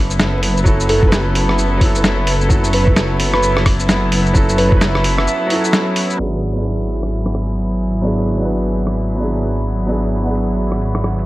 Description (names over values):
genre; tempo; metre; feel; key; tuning
future garage; 130 BPM; 4/4; swing 61% on 16ths; unclear; A4 = 440 Hz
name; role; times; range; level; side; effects
clear upright piano; accompaniment; 0.0-11.3 s; F#3 to B4; -22 LUFS; right 1 dB; vintage 12-bit sampler grit, sidechain pumping, tape echo
rich chamber string section; sustained chords; 0.0-11.3 s; F#3 to A4; -21 LUFS; equal; vintage 12-bit sampler grit, sidechain pumping, low-pass filter
dark detuned saw bass; bass; 0.0-11.3 s; F#1 to G#1; -18 LUFS; equal; none
flickering grainy texture; texture; 0.0-6.2 s; B4; -30 LUFS; right 2 dB; none
lo-fi sampler-style drum kit; drums; 0.1-11.3 s; hi-hat, rim click, shaker, snare drum; -19 LUFS; equal; low-pass filter on snare, low-pass filter on perc, low-pass filter on hats
electronic kick drum; drums; 0.7-4.8 s; none; -13 LUFS; equal; none
soft struck synth lead; melody; 0.9-5.6 s; A4 to E5; -22 LUFS; right 1 dB; chorus, analog delay
room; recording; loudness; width
light reverb; vinyl crackle, low-pass filter; -14 LUFS; side -17 dB against mid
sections
0.0-6.2 A section; 6.2-11.3 B section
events
break 5.3-6.2; filter sweep on string section 6.2-11.3; filter sweep 6.2-11.3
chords
0.0 F#m7; 6.2 G#m7b5